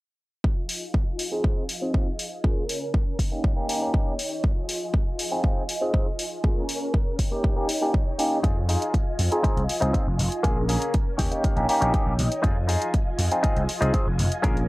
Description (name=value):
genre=filtered disco house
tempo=120 BPM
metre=4/4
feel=straight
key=F minor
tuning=A4 = 444 Hz
part: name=string machine, full ensemble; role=sustained chords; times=0.4-14.7 s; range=Db4 to Ab5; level=-32 LUFS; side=equal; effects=phaser, ensemble chorus, sidechain pumping, low-pass filter
part: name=electronic kick drum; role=drums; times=0.4-14.5 s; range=none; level=-23 LUFS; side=equal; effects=none
part: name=electronic hi-hat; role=drums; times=0.7-14.7 s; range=none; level=-32 LUFS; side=left 1 dB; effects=sidechain pumping on hats
part: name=barky tine electric piano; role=accompaniment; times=1.3-14.6 s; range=Bb3 to Ab4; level=-27 LUFS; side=equal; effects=phaser, sidechain pumping, low-pass filter
part: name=direct-recorded clean electric guitar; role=riff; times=8.4-14.6 s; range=Bb3 to G5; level=-29 LUFS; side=left 1 dB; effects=sidechain pumping, low-pass filter
part: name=vintage slap bass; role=bass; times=8.4-14.7 s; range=F1 to F2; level=-24 LUFS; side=equal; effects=sidechain pumping, low-pass filter
room=digital ambience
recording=dry, gritty hardware recording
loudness=-22 LUFS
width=side -20 dB against mid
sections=0.4-14.7 A section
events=filter sweep 0.4-14.7; clean electric guitar fill 10.9-12.4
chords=0.4 Fm7; 2.4 Bbm7; 3.2 Eb7; 4.4 Fm7; 6.4 Bbm7; 7.2 Eb7; 8.4 Fm7; 10.4 Bbm7; 11.2 Eb7; 12.4 Fm7